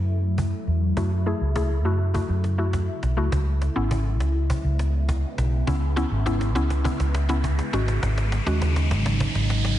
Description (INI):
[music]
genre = dance-pop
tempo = 102 BPM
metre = 4/4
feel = straight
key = C# minor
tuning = A4 = 440 Hz
[part]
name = shimmering ambient pad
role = sustained chords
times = 0.0-9.8 s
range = C#3 to E4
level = -31 LUFS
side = equal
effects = chorus, built-in reverb, phaser, low-pass filter
[part]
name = vintage muted fingered electric bass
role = bass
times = 0.0-9.8 s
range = G#1 to F#2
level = -23 LUFS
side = equal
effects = none
[part]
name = cajon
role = drums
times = 0.1-9.8 s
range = none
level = -31 LUFS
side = equal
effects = none
[part]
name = mallet-like synth pluck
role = accompaniment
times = 1.0-9.1 s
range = G#3 to G#4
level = -29 LUFS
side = left 2 dB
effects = chorus, low-pass filter
[part]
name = riser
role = sound effects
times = 4.7-9.8 s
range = none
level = -34 LUFS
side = equal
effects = none
[sound]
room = light reverb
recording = nothing above 10.7 kHz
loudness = -21 LUFS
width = side -13 dB against mid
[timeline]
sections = 0.0-9.8 A section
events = build-up 0.0-9.8; drum fill 0.0-9.8; filter sweep 0.0-9.8; riser 4.7-9.8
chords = 0.0 F#m7; 3.3 C#m7; 7.7 G#7sus4